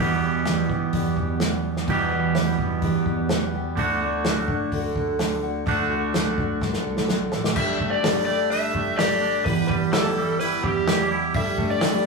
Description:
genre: folk rock and heartland rock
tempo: 127 BPM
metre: 4/4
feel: straight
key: E minor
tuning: A4 = 440 Hz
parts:
  - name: picked steel-string acoustic guitar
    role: accompaniment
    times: 0.0-12.1 s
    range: E2 to G4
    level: -28 LUFS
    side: left 1 dB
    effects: none
  - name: twangy electric guitar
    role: riff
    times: 0.0-12.1 s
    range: E2 to G4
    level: -25 LUFS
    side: right 4 dB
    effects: spring reverb
  - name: fingered electric bass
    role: bass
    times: 0.0-12.1 s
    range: E1 to E3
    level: -32 LUFS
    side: right 1 dB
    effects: none
  - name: unplugged drum kit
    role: drums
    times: 0.5-11.9 s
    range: crash cymbal, hi-hat, kick drum, snare drum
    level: -26 LUFS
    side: equal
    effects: none
  - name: overdriven slide guitar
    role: melody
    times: 7.6-12.1 s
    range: G4 to E5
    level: -25 LUFS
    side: left 2 dB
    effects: none
  - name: accordion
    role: sustained chords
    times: 7.6-12.1 s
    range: A3 to G4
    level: -36 LUFS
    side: right 3 dB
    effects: none
room: wet small room reverb, RT60 0.6 s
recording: rough rehearsal-room recording, warm saturation, studio reverb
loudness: -20 LUFS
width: side -3 dB against mid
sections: 0.0-7.6 A section; 7.6-12.1 B section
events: drum fill 6.6-7.6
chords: 0.0 Em; 3.8 D; 7.6 Gsus2; 9.5 Em; 11.3 Gsus2

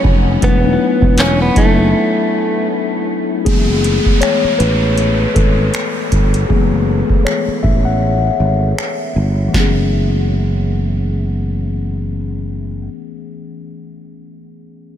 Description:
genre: contemporary R&B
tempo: 79 BPM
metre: 4/4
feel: swing 58% on 16ths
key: F# minor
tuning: A4 = 440 Hz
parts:
  - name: mellow tine electric piano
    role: accompaniment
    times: 0.0-15.0 s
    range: E3 to F#5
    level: -18 LUFS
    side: left 5 dB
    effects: phaser
  - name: sustaining fretless electric bass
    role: bass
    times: 0.0-12.9 s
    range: E1 to A1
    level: -16 LUFS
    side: right 1 dB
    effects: none
  - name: booming analog drum machine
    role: drums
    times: 0.0-9.7 s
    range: finger snaps, handclaps, hi-hat, kick drum, snare drum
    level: -17 LUFS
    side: right 1 dB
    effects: none
  - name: direct-recorded clean electric guitar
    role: melody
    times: 0.4-2.7 s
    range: A3 to C#4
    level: -18 LUFS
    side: right 1 dB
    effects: spring reverb, ping-pong delay
  - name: downlifter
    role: sound effects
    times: 3.5-9.5 s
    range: none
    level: -25 LUFS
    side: right 1 dB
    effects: none
room: moderate huge ambient reverb, RT60 6.9 s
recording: dreamy mix soaked in reverb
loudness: -12 LUFS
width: side -10 dB against mid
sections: 0.0-3.5 A section; 3.5-9.5 B section; 9.5-12.6 C section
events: break 1.9-3.5; tine electric piano solo 3.5-9.5; kick muted 8.0-9.5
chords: 0.4 E7sus4; 3.5 F#m11

